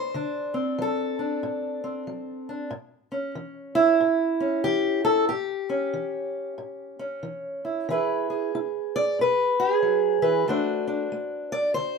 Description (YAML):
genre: acoustic country blues, solo or duo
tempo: 93 BPM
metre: 4/4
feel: swing 62% on 8ths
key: unclear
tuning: A4 = 439 Hz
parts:
  - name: fingerpicked steel-string acoustic guitar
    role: solo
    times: 0.0-12.0 s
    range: A2 to D5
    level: -23 LUFS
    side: right 1 dB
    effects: none
room: light reverb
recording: minimal, uncompressed stereo recording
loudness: -23 LUFS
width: side -4 dB against mid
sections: 0.0-12.0 A section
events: none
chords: 0.0 D7; 2.7 A7; 7.9 E; 10.5 D7